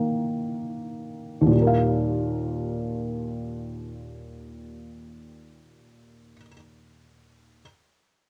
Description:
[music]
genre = children's music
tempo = free time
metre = none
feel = none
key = Eb major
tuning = A4 = 439 Hz
[part]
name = felt-muted upright piano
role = accompaniment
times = 0.0-7.6 s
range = Eb2 to F5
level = -27 LUFS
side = equal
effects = cassette tape
[sound]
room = light reverb, small room ambience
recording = home recording on cassette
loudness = -26 LUFS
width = mono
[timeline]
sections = 0.0-1.5 A section; 1.5-5.1 B section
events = slowing down 0.0-1.5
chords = 0.0 Eb5; 1.5 Ebadd9

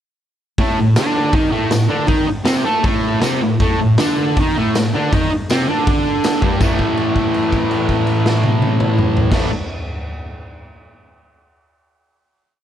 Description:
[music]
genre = garage rock duo or trio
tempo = 160 BPM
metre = 4/4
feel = straight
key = unclear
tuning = A4 = 440 Hz
[part]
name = fuzz guitar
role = riff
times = 0.6-9.5 s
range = G2 to A4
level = -16 LUFS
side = equal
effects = distortion
[part]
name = raw garage drum kit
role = drums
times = 0.6-9.4 s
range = crash cymbal, hi-hat, kick drum, snare drum, toms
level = -19 LUFS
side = equal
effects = none
[part]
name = tambourine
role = percussion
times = 1.0-6.8 s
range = none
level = -32 LUFS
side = left 7 dB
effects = none
[sound]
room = light reverb, small room ambience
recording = none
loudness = -14 LUFS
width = side -10 dB against mid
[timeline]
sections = 0.6-6.6 riff; 6.6-9.5 final chord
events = held note 6.6-9.3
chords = 0.6 Cm69; 6.6 A5

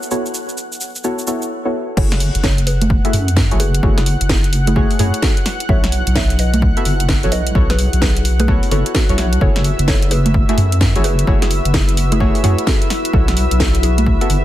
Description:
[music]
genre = UK garage, two-step garage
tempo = 129 BPM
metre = 4/4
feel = swing 63% on 16ths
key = F# minor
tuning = A4 = 440 Hz
[part]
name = warm analog pad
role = sustained chords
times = 0.0-14.4 s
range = E5 to F#6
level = -28 LUFS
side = equal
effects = chorus, sidechain pumping
[part]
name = garage drum kit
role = drums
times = 0.0-14.4 s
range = cabasa, congas, crash cymbal, hi-hat, snare drum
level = -21 LUFS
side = right 1 dB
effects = none
[part]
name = deep dark ambient pad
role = texture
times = 0.3-14.4 s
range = E4 to E5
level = -28 LUFS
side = left 2 dB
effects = chorus, built-in reverb, sidechain pumping
[part]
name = deep mellow chord stab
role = stabs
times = 0.1-14.3 s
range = A3 to E5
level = -23 LUFS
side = equal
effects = chorus, cassette tape, digital delay
[part]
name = hollow square pluck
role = melody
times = 2.0-14.0 s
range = E4 to E5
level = -26 LUFS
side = equal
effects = chorus, digital delay
[part]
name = deep soft wobble bass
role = bass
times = 2.0-14.4 s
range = F#1 to F#2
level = -16 LUFS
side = equal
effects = chorus, tube saturation
[part]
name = electronic kick drum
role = drums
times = 2.0-14.2 s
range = none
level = -17 LUFS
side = equal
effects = none
[sound]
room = little or no reverb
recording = dense, heavily limited modern master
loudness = -13 LUFS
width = side -13 dB against mid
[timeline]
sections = 0.0-2.0 A section; 2.0-14.4 B section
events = drop 2.0-14.4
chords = 0.0 B9sus4; 2.0 F#m7; 12.9 B9sus4

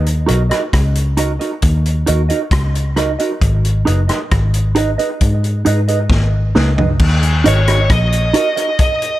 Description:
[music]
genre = dub reggae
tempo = 67 BPM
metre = 4/4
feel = straight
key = Eb minor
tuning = A4 = 438 Hz
[part]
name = vintage muted fingered electric bass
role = bass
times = 0.0-8.3 s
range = Gb1 to Ab2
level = -14 LUFS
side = equal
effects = none
[part]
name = vintage drum kit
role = drums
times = 0.1-9.2 s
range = crash cymbal, hi-hat, kick drum, rim click, snare drum, toms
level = -18 LUFS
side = equal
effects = none
[part]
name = mellow electric guitar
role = accompaniment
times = 0.3-8.7 s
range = Eb4 to Eb5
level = -19 LUFS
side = right 4 dB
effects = phaser, dub echo
[part]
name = bluesy overdriven lead guitar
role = melody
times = 7.5-9.2 s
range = Db5 to Eb5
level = -17 LUFS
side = equal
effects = distortion, dub echo
[sound]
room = small room reverb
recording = echo-heavy mix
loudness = -12 LUFS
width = side -15 dB against mid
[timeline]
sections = 0.0-7.0 A section; 7.0-9.2 B section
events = break 0.0-7.0; drum fill 6.1-7.0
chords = 0.0 Ebm; 3.4 Abm; 7.0 Ebm

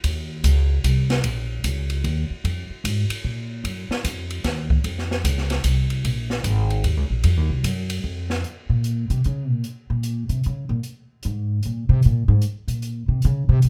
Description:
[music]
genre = jazz, small-group swing and bop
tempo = 150 BPM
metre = 3/4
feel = swing 64% on 8ths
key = Bb minor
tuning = A4 = 440 Hz
[part]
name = upright bass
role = bass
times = 0.0-13.7 s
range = Ab1 to Db3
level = -23 LUFS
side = equal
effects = none
[part]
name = open jazz drum kit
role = drums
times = 0.0-13.7 s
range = hi-hat, kick drum, ride cymbal, snare drum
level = -30 LUFS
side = equal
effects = none
[sound]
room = little or no reverb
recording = none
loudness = -23 LUFS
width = mono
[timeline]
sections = 0.0-8.4 A section; 8.4-13.7 B section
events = upright bass solo 8.4-13.7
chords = none

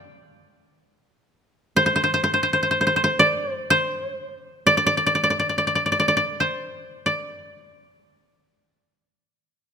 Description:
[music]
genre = japanese traditional, Japanese chamber music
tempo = free time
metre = none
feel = none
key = unclear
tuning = A4 = 440 Hz
[part]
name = koto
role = solo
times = 0.0-9.7 s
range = C5 to C6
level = -18 LUFS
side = equal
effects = none
[sound]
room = light reverb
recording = close, detailed microphones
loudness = -19 LUFS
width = side -6 dB against mid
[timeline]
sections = 0.0-9.7 A section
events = none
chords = none

